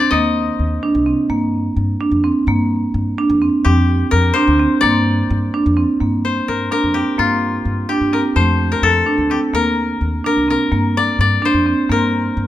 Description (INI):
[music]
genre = contemporary instrumental, chamber music in an uneven meter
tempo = 255 BPM (eighths)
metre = 5/8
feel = straight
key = G minor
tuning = A4 = 440 Hz
[part]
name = koto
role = melody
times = 0.0-12.5 s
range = F4 to Eb5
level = -18 LUFS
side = left 5 dB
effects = none
[part]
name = marimba with hard mallets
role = arpeggios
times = 0.0-12.3 s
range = A3 to D4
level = -17 LUFS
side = right 2 dB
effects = none
[part]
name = upright bass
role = bass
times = 0.1-12.5 s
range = C2 to G2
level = -20 LUFS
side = equal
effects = none
[sound]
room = light reverb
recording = none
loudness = -14 LUFS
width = side -13 dB against mid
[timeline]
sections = 0.0-6.0 A section; 6.0-12.5 B section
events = none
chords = 0.1 Eb5; 1.3 Gm7; 3.7 Fsus2; 4.8 Gm7; 8.4 F; 9.5 Eb5; 10.7 Gm